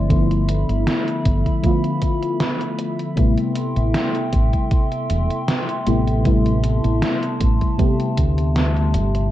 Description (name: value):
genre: vaporwave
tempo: 78 BPM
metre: 4/4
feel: swing 54% on 16ths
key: A minor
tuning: A4 = 440 Hz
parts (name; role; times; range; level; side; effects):
- mellow FM electric piano; accompaniment; 0.0-9.3 s; C3 to G4; -21 LUFS; left 1 dB; analog chorus, tape echo
- warbly tape-like pad; sustained chords; 0.0-9.3 s; A4 to C6; -28 LUFS; right 1 dB; chorus, built-in reverb
- fingered electric bass; bass; 0.0-9.3 s; E1 to D2; -20 LUFS; equal; none
- electronic kick drum; drums; 0.1-8.3 s; none; -19 LUFS; equal; none
- gated 80s digital drum machine; drums; 0.1-9.3 s; hi-hat, snare drum; -25 LUFS; right 1 dB; gated reverb, gated reverb snare
room: light reverb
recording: dark, warm production, cassette tape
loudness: -17 LUFS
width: side -14 dB against mid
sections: 0.0-9.3 A section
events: none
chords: 0.1 G13; 3.2 Am7